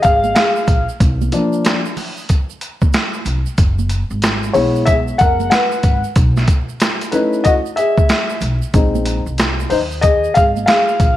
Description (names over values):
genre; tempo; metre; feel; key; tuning
hip hop, jazz-hop; 93 BPM; 4/4; swing 63% on 16ths; unclear; A4 = 435 Hz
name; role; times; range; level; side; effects
dark concert grand piano; accompaniment; 0.0-11.2 s; F3 to Gb5; -15 LUFS; left 2 dB; none
upright bass; bass; 0.0-11.2 s; Gb1 to Eb2; -20 LUFS; equal; none
boom bap sampler-style drum kit; drums; 0.0-11.2 s; hi-hat, kick drum, snare drum; -16 LUFS; equal; none
tube shaker and congas; percussion; 0.0-11.2 s; none; -31 LUFS; right 9 dB; none
room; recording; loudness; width
light reverb, studio ambience; vinyl crackle; -13 LUFS; side -13 dB against mid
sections
0.0-11.2 A section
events
grand piano solo 0.0-11.2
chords
0.0 Bb7(no3); 1.0 C9sus4; 3.6 Gb9sus4; 6.2 B9sus4; 8.7 Bb9sus4